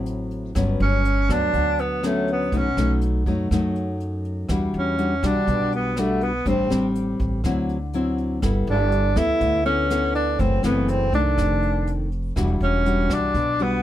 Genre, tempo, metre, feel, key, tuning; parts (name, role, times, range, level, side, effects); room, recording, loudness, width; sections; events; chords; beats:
bossa nova; 122 BPM; 4/4; straight; A4 = 440 Hz
nylon-string guitar; accompaniment; 0.0-13.8 s; F2 to A4; -24 LUFS; left 2 dB
upright bass; bass; 0.0-13.8 s; E1 to F#2; -25 LUFS; right 1 dB
jazz brush drum kit; drums; 0.1-13.7 s; hi-hat, kick drum, rim click; -30 LUFS; equal
breathy tenor saxophone; melody; 0.8-13.8 s; A3 to E4; -22 LUFS; right 1 dB
little or no reverb; close, detailed microphones; -19 LUFS; side -12 dB against mid
0.0-13.8 A section
0.0 D9 (rootless); 0.6 Gmaj7#11; 2.5 B7; 4.5 Em9; 6.5 Am7; 7.4 D9; 8.4 G69; 10.4 F#m7b5; 11.4 F6; 12.4 Em9
0.07 | 0.56 1.05 1.54 2.04 | 2.53 3.02 3.51 4.00 | 4.49 4.99 5.48 5.97 | 6.46 6.95 7.45 7.94 | 8.43 8.92 9.41 9.90 | 10.39 10.89 11.38 11.87 | 12.36 12.85 13.34